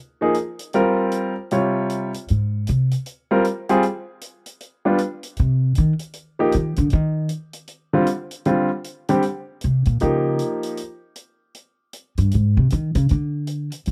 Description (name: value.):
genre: jazz, small-group swing and bop.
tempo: 156 BPM.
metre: 4/4.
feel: swing 63% on 8ths.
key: unclear.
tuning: A4 = 440 Hz.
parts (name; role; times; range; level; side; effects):
clear grand piano; accompaniment; 0.2-10.8 s; C3 to Db5; -21 LUFS; equal; none.
hi-hat; drums; 0.3-13.9 s; none; -41 LUFS; equal; none.
upright bass; bass; 2.3-2.9, 5.4-7.3, 9.6-13.9 s; G2 to Eb3; -20 LUFS; equal; none.
room: studio reverb.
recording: dry, close 1970s-style studio recording.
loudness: -21 LUFS.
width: mono.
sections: 0.0-8.5 A section; 8.5-13.9 A section.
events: upright bass solo 0.0-13.9.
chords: 0.0 Fm7; 0.7 Bbm69; 2.3 Abmaj7; 3.8 N.C.; 4.6 G7; 5.4 Cm; 7.7 Dmadd11; 8.5 Bb69 (rootless); 10.0 Gm7b5; 10.8 N.C.; 11.5 Abmaj7/G; 13.1 N.C..